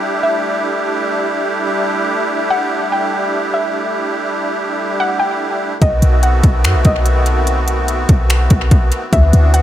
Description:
hip hop, atmospheric cloud-rap; 145 BPM; 4/4; half-time; E minor; A4 = 441 Hz
soft round pluck; melody; 0.0-9.6 s; D#5 to G5; -20 LUFS; left 1 dB; chorus, low-pass filter, tape echo
musette accordion; sustained chords; 0.0-9.6 s; D#3 to G4; -18 LUFS; right 1 dB
clean 808-style bass; bass; 5.8-9.6 s; B1 to F#2; -12 LUFS; equal
trap drum kit; drums; 5.8-9.6 s; finger snaps, hi-hat, kick drum; -15 LUFS; equal
light reverb, digital ambience; echo-heavy mix; -13 LUFS; side -12 dB against mid
0.0-9.6 A section
0.0 Em11; 5.8 B7b9

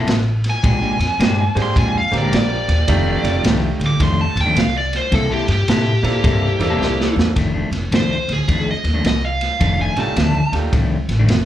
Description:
electric blues shuffle; 107 BPM; 4/4; swing 65% on 8ths; F mixolydian; A4 = 439 Hz
electric guitar at the edge of break-up; riff; 0.0-11.4 s; F2 to A4; -22 LUFS; left 3 dB; slapback echo
upright bass; bass; 0.1-11.5 s; F1 to Bb2; -19 LUFS; equal
crunchy breakbeat drum kit; drums; 0.1-11.5 s; kick drum, ride cymbal, snare drum; -21 LUFS; right 1 dB
biting lead guitar; melody; 0.5-10.5 s; G4 to D6; -21 LUFS; equal; overdrive, slapback echo
bright grand piano; accompaniment; 1.6-10.7 s; A3 to Bb4; -25 LUFS; right 6 dB; slapback echo
light reverb; live gig heard through the venue's PA, club reverb; -15 LUFS; side -12 dB against mid
0.0-7.4 A section; 7.4-11.5 B section
lead electric guitar solo 0.0-7.4; drum fill 6.8-7.4
0.0 C13; 0.6 Bb13; 2.9 F13; 5.1 C13; 7.4 F13

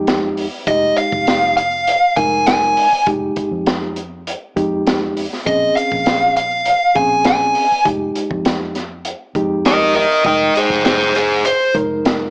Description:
straight-eighth soul blues; 100 BPM; 4/4; straight; F minor; A4 = 440 Hz
mellow reed electric piano; accompaniment; 0.0-12.3 s; Ab3 to G5; -20 LUFS; equal; fast tremolo
vintage muted fingered electric bass; bass; 0.0-12.3 s; F1 to F2; -30 LUFS; equal
crunchy breakbeat drum kit; drums; 0.1-12.2 s; hi-hat, kick drum, snare drum; -20 LUFS; equal
biting lead guitar; melody; 0.7-11.7 s; Ab4 to Ab5; -13 LUFS; equal; overdrive
light reverb, small room ambience; small speaker sound; -13 LUFS; side -31 dB against mid
0.0-12.3 A section
0.0 Fm7; 5.5 Bbm7; 7.9 Fm7

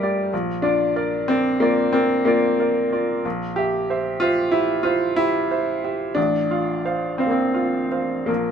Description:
classical, romantic nocturne for solo piano; 51-67 BPM (dotted quarters); 9/8; rubato; F major; A4 = 440 Hz
bright baby grand piano; solo; 0.0-8.5 s; A1 to F5; -19 LUFS; equal
light reverb; -19 LUFS; side -7 dB against mid
0.0-8.5 A section
0.3 Bb; 3.3 C7/Bb; 6.2 F/A

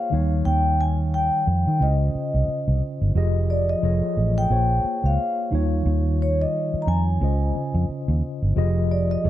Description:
lush 1970s-style soul; 89 BPM; 4/4; swing 58% on 16ths; A4 = 440 Hz
vibraphone with soft mallets; melody; 0.0-9.3 s; Db5 to Bb5; -26 LUFS; left 1 dB
mellow tine electric piano; accompaniment; 0.0-9.3 s; Db3 to F5; -27 LUFS; left 1 dB; medium stereo tremolo
vintage muted fingered electric bass; bass; 0.1-9.3 s; F1 to Eb3; -21 LUFS; right 1 dB
light reverb; dark, warm production; -20 LUFS; side -13 dB against mid
0.0-9.3 A section
0.1 Eb9; 1.8 Dbmaj9; 3.2 Fm7; 3.8 F7alt; 4.5 Bbm7; 5.5 Eb9; 7.2 Dbmaj9; 8.6 Fm7

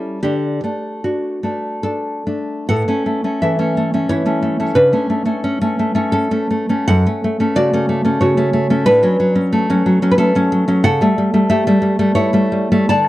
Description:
romantic piece for solo classical guitar; 63-92 BPM; 3/4; rubato; A major; A4 = 440 Hz
nylon-string guitar; solo; 0.0-13.1 s; F#2 to A5; -14 LUFS; equal
little or no reverb; dry, close 1970s-style studio recording; -14 LUFS; side -16 dB against mid
0.0-2.7 A section; 2.7-13.1 B section
0.2 D; 2.7 A; 4.8 A/C#; 6.9 F#m; 8.9 F#m/A; 10.8 A7/C#

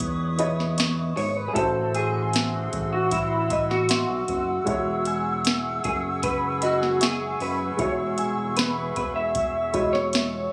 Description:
indie pop, bedroom pop; 77 BPM; 4/4; straight; E major; A4 = 440 Hz
electric guitar through a small old amp; accompaniment; 0.0-10.5 s; E4 to E5; -29 LUFS; equal; lush chorus, vibrato effect
warm upright piano; accompaniment; 0.0-10.5 s; G#3 to D#5; -33 LUFS; equal; cassette tape
flute section; sustained chords; 0.0-10.5 s; F#4 to E6; -33 LUFS; equal
fat analog bass; bass; 0.0-10.5 s; E1 to E2; -32 LUFS; equal
soft vintage rhythm box; drums; 0.0-10.3 s; hi-hat, kick drum, snare drum; -30 LUFS; equal
glassy synth bell; second line; 0.4-10.5 s; D#5 to E6; -34 LUFS; equal; ensemble chorus, analog delay
light reverb; recorded on a phone in the room, studio ambience, compression; -24 LUFS; mono
0.0-10.5 A section
clean electric guitar solo 0.0-10.5
0.0 C#m9; 1.6 Am6; 4.7 E69

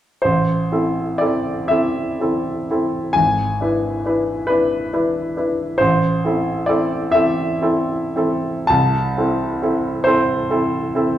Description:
classical, romantic nocturne for solo piano; 36-46 BPM (dotted quarters); 12/8; rubato; A minor; A4 = 440 Hz
clear baby grand piano; solo; 0.2-11.2 s; G#1 to A5; -16 LUFS; equal
wet large studio reverb, RT60 1.3 s; heard from further back in the room; -16 LUFS; side -12 dB against mid
0.2-11.2 A section
0.2 Am; 3.2 E7/G#; 5.8 Am; 8.7 Am/C

